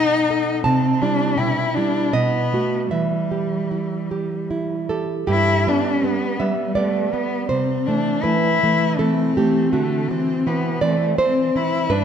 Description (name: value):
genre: romantic duo for cello and classical guitar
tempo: 74-86 BPM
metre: 3/4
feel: rubato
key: E minor, G major from 5.3 s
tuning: A4 = 440 Hz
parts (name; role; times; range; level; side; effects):
- rich cello; melody; 0.0-12.0 s; G3 to E4; -21 LUFS; left 4 dB; none
- nylon-string guitar; accompaniment; 0.0-12.0 s; G2 to A5; -20 LUFS; right 3 dB; none
room: wet concert hall reverb, RT60 1.8 s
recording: none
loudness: -18 LUFS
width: side -8 dB against mid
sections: 0.0-5.3 A section; 5.3-12.0 B section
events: none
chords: 0.0 B7; 0.7 C; 1.4 Em/B; 2.1 B7; 2.9 Em; 5.3 G; 7.5 Am/C; 9.7 D9